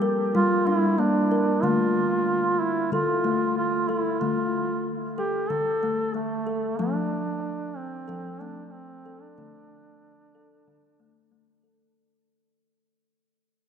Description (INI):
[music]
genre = world meditative, meditative tuned percussion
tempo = 93 BPM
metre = 4/4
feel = swing 53% on 16ths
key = D minor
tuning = A4 = 443 Hz
[part]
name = kalimba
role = arpeggios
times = 0.0-12.0 s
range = D3 to Bb4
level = -26 LUFS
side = left 2 dB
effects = none
[part]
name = warm duduk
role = melody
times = 0.3-11.3 s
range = A3 to A4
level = -26 LUFS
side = right 2 dB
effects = diffuse ambient delay
[sound]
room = wet concert hall reverb, RT60 2.3 s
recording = none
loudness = -22 LUFS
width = side -8 dB against mid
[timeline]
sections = 0.0-12.0 A section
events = fade-out 0.0-12.0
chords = 0.0 Gm; 1.6 Dm; 6.8 F; 9.4 D5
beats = 0.34 0.98 | 1.63 2.27 2.92 3.57 | 4.21 4.86 5.50 6.15 | 6.79 7.44 8.08 8.73 | 9.37 10.02 10.67 11.31